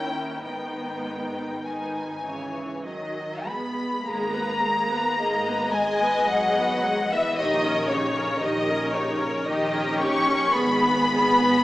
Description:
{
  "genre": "classical, slow romantic movement for string orchestra",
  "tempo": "49-58 BPM",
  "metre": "3/4",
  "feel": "rubato",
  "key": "G# minor",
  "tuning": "A4 = 440 Hz",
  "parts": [
    { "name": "warm studio violin section", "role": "melody", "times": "0.0-11.6 s", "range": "G4 to G#5", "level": "-30 LUFS", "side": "left 2 dB", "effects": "none" },
    { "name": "warm symphonic violin section", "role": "second line", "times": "0.0-11.6 s", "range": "D#4 to C#6", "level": "-25 LUFS", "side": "left 1 dB", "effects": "none" },
    { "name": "warm studio viola section", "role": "accompaniment", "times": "0.0-11.6 s", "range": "D#3 to B4", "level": "-29 LUFS", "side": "equal", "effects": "none" },
    { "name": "rich symphonic cello section", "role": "bass", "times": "0.0-11.6 s", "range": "D#2 to C#4", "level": "-29 LUFS", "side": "right 1 dB", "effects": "none" },
    { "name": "warm symphonic double bass section", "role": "bass", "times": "0.0-11.6 s", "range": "G#1 to D#2", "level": "-37 LUFS", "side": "right 1 dB", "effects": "none" }
  ],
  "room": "wet scoring stage reverb, RT60 1.9 s",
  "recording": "small speaker sound",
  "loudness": "-22 LUFS",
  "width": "side -16 dB against mid",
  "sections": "0.0-4.0 A section; 4.0-11.6 B section",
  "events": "none",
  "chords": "0.4 G#m; 7.4 D#7/A#; 10.5 G#m"
}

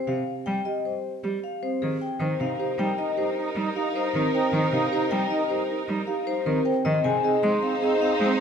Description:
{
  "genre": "classical, minimalist pattern music",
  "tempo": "155 BPM",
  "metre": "6/4",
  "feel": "straight",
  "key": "unclear",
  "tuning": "A4 = 440 Hz",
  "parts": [
    { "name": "vibraphone with medium hard mallets", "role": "melody", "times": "0.0-8.3 s", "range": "Ab4 to C6", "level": "-28 LUFS", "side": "left 8 dB", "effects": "none" },
    { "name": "marimba with soft mallets", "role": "arpeggios", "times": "0.0-8.4 s", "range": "C4 to C5", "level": "-28 LUFS", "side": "right 6 dB", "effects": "none" },
    { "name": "rich cello", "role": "accompaniment", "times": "0.1-8.3 s", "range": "C3 to Ab3", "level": "-30 LUFS", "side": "right 1 dB", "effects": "none" },
    { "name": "bright alto flute", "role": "second line", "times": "2.2-8.4 s", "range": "C4 to Eb4", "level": "-31 LUFS", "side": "right 4 dB", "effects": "none" },
    { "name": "rich studio string section", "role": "sustained chords", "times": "2.2-8.4 s", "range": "Eb4 to C5", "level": "-31 LUFS", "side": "equal", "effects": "none" }
  ],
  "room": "moderate recital hall reverb, RT60 1.4 s",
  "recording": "none",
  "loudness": "-23 LUFS",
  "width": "side -7 dB against mid",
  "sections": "0.0-2.2 A section; 2.2-8.4 B section",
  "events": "none",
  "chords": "0.0 F5; 2.2 Cm7; 6.8 Ab"
}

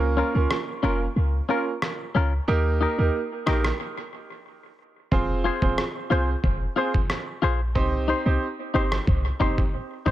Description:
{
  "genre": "dancehall",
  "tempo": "91 BPM",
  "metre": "4/4",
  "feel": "straight",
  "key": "F minor",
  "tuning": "A4 = 440 Hz",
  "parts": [
    { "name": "clear grand piano", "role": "accompaniment", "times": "0.0-10.1 s", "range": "Bb3 to C5", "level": "-28 LUFS", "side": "right 5 dB", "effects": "analog delay" },
    { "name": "clean 808-style bass", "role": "bass", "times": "0.0-10.1 s", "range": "F1 to Eb2", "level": "-24 LUFS", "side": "equal", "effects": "none" },
    { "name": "clean electric guitar", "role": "arpeggios", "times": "0.2-10.1 s", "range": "Db4 to C5", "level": "-27 LUFS", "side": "left 6 dB", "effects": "tremolo" },
    { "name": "trip hop sampler-style drum kit", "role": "drums", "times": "0.5-10.1 s", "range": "kick drum, rim click", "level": "-26 LUFS", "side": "equal", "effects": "analog delay" }
  ],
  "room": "little or no reverb",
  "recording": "echo-heavy mix",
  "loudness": "-22 LUFS",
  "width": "side -14 dB against mid",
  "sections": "0.0-10.1 A section",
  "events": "break 0.0-5.1",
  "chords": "0.0 Bbm; 2.5 Eb; 5.1 Fm; 7.8 Cm"
}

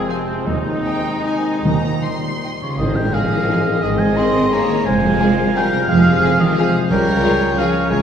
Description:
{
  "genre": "classical, orchestral ballroom waltz",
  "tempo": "147-193 BPM",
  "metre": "3/4",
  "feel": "rubato",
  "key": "Ab major",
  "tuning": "A4 = 440 Hz",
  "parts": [
    { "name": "warm clarinet", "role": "second line", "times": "0.0-8.0 s", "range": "F3 to C5", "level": "-27 LUFS", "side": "left 4 dB", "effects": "none" },
    { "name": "warm oboe", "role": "second line", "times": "0.0-8.0 s", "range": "C4 to C6", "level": "-22 LUFS", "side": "right 1 dB", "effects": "none" },
    { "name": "rich symphonic viola section", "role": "accompaniment", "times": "0.0-7.7 s", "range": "C4 to F4", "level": "-30 LUFS", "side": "equal", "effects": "none" },
    { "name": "clear trombone section", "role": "sustained chords", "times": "0.0-8.0 s", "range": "Bb2 to Bb3", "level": "-28 LUFS", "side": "left 1 dB", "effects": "none" },
    { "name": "warm French horn section", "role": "sustained chords", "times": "0.0-8.0 s", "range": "C3 to Ab4", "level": "-26 LUFS", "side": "left 4 dB", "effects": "none" },
    { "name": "concert harp", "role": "arpeggios", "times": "0.0-8.0 s", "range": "F2 to Bb5", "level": "-28 LUFS", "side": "left 5 dB", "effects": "none" },
    { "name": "clear trumpet section", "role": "stabs", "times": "0.0-8.0 s", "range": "C4 to F5", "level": "-26 LUFS", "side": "right 2 dB", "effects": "none" },
    { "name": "warm symphonic violin section", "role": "melody", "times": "0.1-7.7 s", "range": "F4 to C6", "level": "-29 LUFS", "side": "left 5 dB", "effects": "none" },
    { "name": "warm symphonic violin section", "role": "second line", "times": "0.1-8.0 s", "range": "F4 to Ab5", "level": "-27 LUFS", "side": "left 2 dB", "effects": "none" },
    { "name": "clear symphonic double bass section", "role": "bass", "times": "0.5-8.0 s", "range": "F1 to Eb2", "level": "-24 LUFS", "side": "right 3 dB", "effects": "none" },
    { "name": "rich symphonic cello section", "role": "bass", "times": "0.5-8.0 s", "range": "Eb2 to C4", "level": "-20 LUFS", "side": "right 2 dB", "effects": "none" },
    { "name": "timpani", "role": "percussion", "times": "0.5-2.2 s", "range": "Eb3", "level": "-23 LUFS", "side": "right 1 dB", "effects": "none" },
    { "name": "tam-tam", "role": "percussion", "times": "2.8-4.1 s", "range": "none", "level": "-28 LUFS", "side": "left 2 dB", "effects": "none" }
  ],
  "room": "wet concert hall reverb, RT60 2.4 s",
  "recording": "heard from further back in the room",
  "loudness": "-15 LUFS",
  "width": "side -8 dB against mid",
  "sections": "0.0-2.8 A section; 2.8-8.0 B section",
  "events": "band accent 2.8-3.1",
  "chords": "0.5 Ab/Eb; 1.6 Eb; 2.8 Ab; 4.9 Fm; 6.9 Db"
}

